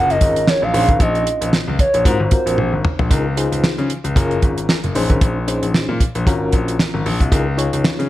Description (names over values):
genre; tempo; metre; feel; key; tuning
early-eighties boogie funk; 114 BPM; 4/4; swing 56% on 16ths; Db major; A4 = 438 Hz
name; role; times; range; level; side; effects
gliding portamento lead; melody; 0.0-2.8 s; C5 to Gb5; -19 LUFS; right 2 dB; chorus
FM electric piano with tremolo; accompaniment; 0.0-8.1 s; C4 to Db5; -23 LUFS; left 2 dB; none
clear concert grand piano; bass; 0.0-8.1 s; Gb1 to Db3; -20 LUFS; left 1 dB; none
damped 70s drum kit; drums; 0.1-8.1 s; hi-hat, kick drum, snare drum, toms; -17 LUFS; equal; gated reverb
room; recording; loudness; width
little or no reverb; none; -14 LUFS; side -15 dB against mid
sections
0.0-3.1 A section; 3.1-8.1 B section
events
drum fill 2.6-3.1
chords
0.0 Gbmaj9; 0.7 Bbm11; 2.1 Ab13; 3.1 Db69; 4.2 Gbmaj9; 4.9 Bbm11; 6.3 Ab13sus4; 7.3 Db69